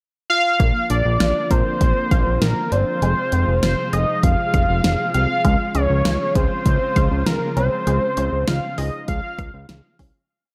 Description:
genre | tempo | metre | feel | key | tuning
synth-pop | 99 BPM | 4/4 | straight | unclear | A4 = 438 Hz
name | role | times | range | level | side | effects
unison lead | melody | 0.3-10.0 s | Bb4 to F5 | -23 LUFS | equal | delay
ensemble organ-string | sustained chords | 0.6-10.3 s | C3 to F4 | -31 LUFS | equal | ensemble chorus
resonant blip pluck | arpeggios | 0.6-10.2 s | Ab3 to F5 | -32 LUFS | equal | phaser, delay
fat analog bass | bass | 0.6-10.1 s | F1 to Db2 | -23 LUFS | equal | none
deep house drum kit | drums | 0.6-10.1 s | hi-hat, kick drum, snare drum | -23 LUFS | equal | gated reverb
room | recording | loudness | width
light reverb, digital ambience | none | -19 LUFS | mono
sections
0.0-0.6 pickup bar; 0.6-10.3 chorus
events
fade-out 7.9-10.3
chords
0.0 N.C.; 0.6 Bb; 3.0 Fm; 5.4 Db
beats
| 0.60 1.21 1.81 2.42 | 3.02 3.63 4.24 4.84 | 5.45 6.05 6.66 7.26 | 7.87 8.48 9.08 9.69

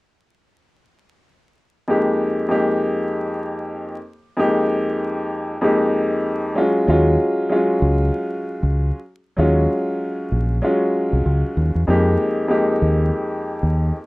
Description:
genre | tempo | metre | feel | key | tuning
hip hop | 96 BPM | 4/4 | swing 59% on 16ths | unclear | A4 = 442 Hz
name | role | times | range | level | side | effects
warm upright piano | accompaniment | 1.9-14.0 s | F2 to G4 | -18 LUFS | equal | cassette tape, high-pass filter, low-pass filter
deep dub fingered electric bass | bass | 6.9-13.9 s | Bb1 to F2 | -18 LUFS | equal | none
room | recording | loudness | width
moderate studio reverb, RT60 0.5 s | rough home demo mix, vinyl crackle | -17 LUFS | side -21 dB against mid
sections
1.9-11.9 A section; 11.9-14.1 B section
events
none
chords
1.9 Fm11; 6.6 Ebm11; 11.9 Fm11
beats
| 1.88 2.50 3.13 3.75 | 4.38 5.00 5.63 6.25 | 6.88 7.50 8.13 8.75 | 9.38 10.00 10.63 11.25 | 11.88 12.50 13.13 13.75

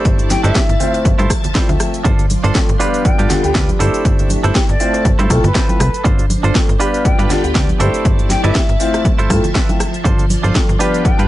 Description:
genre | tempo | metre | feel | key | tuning
filtered disco house | 120 BPM | 4/4 | swing 56% on 16ths | unclear | A4 = 440 Hz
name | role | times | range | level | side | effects
warm grand piano | accompaniment | 0.0-11.3 s | F3 to E5 | -20 LUFS | left 1 dB | phaser, sidechain pumping
string machine, full ensemble | sustained chords | 0.0-11.3 s | F3 to C6 | -26 LUFS | left 1 dB | phaser, ensemble chorus, sidechain pumping
direct-recorded clean electric guitar | riff | 0.0-11.3 s | D4 to D5 | -22 LUFS | right 4 dB | vintage 12-bit sampler grit, sidechain pumping
egg shaker and congas | percussion | 0.0-11.3 s | none | -26 LUFS | right 3 dB | sidechain pumping on perc
slap-like FM bass | bass | 0.1-11.3 s | G1 to G2 | -17 LUFS | equal | tube saturation, sidechain pumping
electronic kick drum | drums | 0.1-11.2 s | none | -16 LUFS | equal | overdrive
house drum kit | drums | 0.1-11.3 s | hi-hat, rim click, shaker, snare drum | -22 LUFS | equal | none
silver concert flute | melody | 0.3-11.2 s | B4 to G5 | -23 LUFS | left 2 dB | sidechain pumping, tape echo
room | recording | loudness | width
little or no reverb | nothing above 10.8 kHz | -12 LUFS | side -15 dB against mid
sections
0.0-11.3 A section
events
none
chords
0.0 C69/G; 1.1 Fmaj7/G; 2.1 Dm7/G; 2.8 G7; 3.8 C69/G; 5.1 Fmaj7/G; 6.1 Dm7/G; 6.8 G7; 7.8 C69/G; 9.1 Fmaj7; 10.1 Dm7/G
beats
| 0.05 0.55 1.05 1.55 | 2.05 2.55 3.05 3.55 | 4.05 4.55 5.05 5.55 | 6.05 6.55 7.05 7.55 | 8.05 8.55 9.05 9.55 | 10.05 10.55 11.05

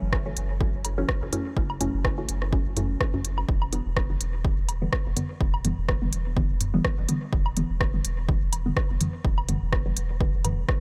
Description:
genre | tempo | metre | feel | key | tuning
dub techno | 125 BPM | 4/4 | swing 55% on 16ths | unclear | A4 = 441 Hz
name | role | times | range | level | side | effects
filtered dub chord stab | stabs | 0.0-10.8 s | D3 to C#4 | -33 LUFS | equal | phaser, sidechain pumping, dub echo
soft dub sub bass | bass | 0.0-10.6 s | E1 to F#1 | -32 LUFS | equal | sidechain pumping
deep house drum kit | drums | 0.1-10.8 s | hi-hat, rim click | -34 LUFS | equal | none
electronic kick drum | drums | 0.1-10.8 s | none | -28 LUFS | equal | none
electronic woodblock and toms | percussion | 0.8-10.6 s | none | -35 LUFS | equal | sidechain pumping on perc, sidechain pumping on toms, dub echo
room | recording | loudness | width
little or no reverb | none | -26 LUFS | mono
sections
0.0-10.8 A section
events
filter sweep on synth stab 0.0-10.8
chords
0.0 F#m7; 3.5 Em7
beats
0.13 0.61 1.09 | 1.57 2.05 2.53 3.01 | 3.49 3.97 4.45 4.93 | 5.41 5.89 6.37 6.85 | 7.33 7.81 8.29 8.77 | 9.25 9.73 10.21 10.69

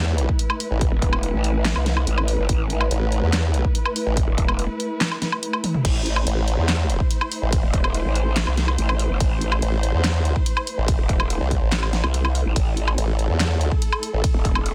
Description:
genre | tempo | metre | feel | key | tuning
heavy wobble dubstep | 143 BPM | 4/4 | half-time | A minor | A4 = 436 Hz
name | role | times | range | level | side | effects
dark studio string section | sustained chords | 0.0-14.7 s | A3 to C5 | -32 LUFS | equal | sidechain pumping
formant-sweep wobble bass | bass | 0.0-14.2 s | A1 to E2 | -23 LUFS | equal | chorus, overdrive
big-room dance drum kit | drums | 0.2-14.7 s | crash cymbal, handclaps, hi-hat, ride cymbal, snare drum, toms, woodblock | -28 LUFS | equal | none
electronic kick drum | drums | 0.3-14.5 s | none | -24 LUFS | equal | none
growl bass | bass | 0.9-14.7 s | E1 to C2 | -25 LUFS | equal | chorus, overdrive
room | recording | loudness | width
digital ambience | dense, heavily limited modern master | -22 LUFS | mono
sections
0.0-14.7 A section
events
drum fill 5.6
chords
0.0 Am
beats
0.39 | 0.81 1.23 1.65 2.07 | 2.49 2.91 3.33 3.75 | 4.17 4.59 5.01 5.43 | 5.85 6.27 6.69 7.11 | 7.53 7.95 8.37 8.78 | 9.20 9.62 10.04 10.46 | 10.88 11.30 11.72 12.14 | 12.56 12.98 13.40 13.82 | 14.24 14.66

